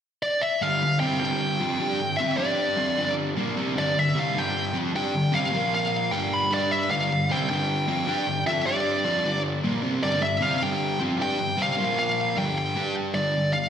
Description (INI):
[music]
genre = rock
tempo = 153 BPM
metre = 4/4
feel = straight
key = unclear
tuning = A4 = 440 Hz
[part]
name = high-gain lead guitar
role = melody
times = 0.2-13.7 s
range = D5 to B5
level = -25 LUFS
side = left 1 dB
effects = distortion, plate reverb, slapback echo, tape echo
[part]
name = overdriven semi-hollow guitar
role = riff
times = 0.6-13.7 s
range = G2 to G4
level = -25 LUFS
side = equal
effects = slapback echo
[sound]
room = moderate club reverb, RT60 0.8 s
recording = live gig heard through the venue's PA, recital hall reverb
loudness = -22 LUFS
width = side -8 dB against mid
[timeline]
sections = 0.6-13.1 A section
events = none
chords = 0.0 N.C.; 0.6 G5; 5.5 Bb5; 6.1 G5; 11.8 Bb5; 12.4 G5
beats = 0.22 | 0.62 1.01 1.40 1.80 | 2.19 2.58 2.98 3.37 | 3.76 4.15 4.55 4.94 | 5.33 5.72 6.12 6.51 | 6.90 7.29 7.68 8.07 | 8.47 8.86 9.25 9.64 | 10.03 10.42 10.81 11.20 | 11.59 11.98 12.37 12.76 | 13.15 13.54